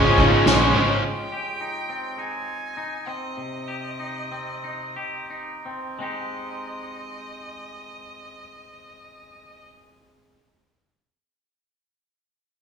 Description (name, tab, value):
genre	post-rock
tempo	84-106 BPM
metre	4/4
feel	straight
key	Ab major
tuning	A4 = 440 Hz
part	rich violin	melody	0.0-9.6 s	Eb5 to Ab5	-36 LUFS	right 1 dB	none
part	glassy FM pad	sustained chords	0.0-1.0 s	F4 to Ab5	-29 LUFS	right 1 dB	ensemble chorus, built-in reverb
part	twangy electric guitar	arpeggios	0.0-10.4 s	C3 to G4	-29 LUFS	left 2 dB	none
part	overdriven electric guitar	riff	0.0-1.0 s	Db3 to Db4	-19 LUFS	right 1 dB	none
part	fuzz fingered electric bass	bass	0.0-1.0 s	Ab1 to Bb1	-24 LUFS	equal	overdrive
part	soft-mallet drum kit	drums	0.2-0.9 s	crash cymbal, kick drum, snare drum	-23 LUFS	right 1 dB	none
room	wet recital hall reverb, RT60 1.3 s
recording	recorded in a church or concert hall, small room ambience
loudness	-22 LUFS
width	side -7 dB against mid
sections	0.0-1.0 A section; 1.0-6.0 B section; 6.0-8.9 C section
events	slowing down 1.0-6.0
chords	0.0 Db; 1.0 Abmaj7; 3.4 Cm; 6.0 Abmaj7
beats	0.47 | 1.03 1.60 2.18 2.77 | 3.37 3.99 4.64 5.31 | 6.01 6.72 7.44 8.15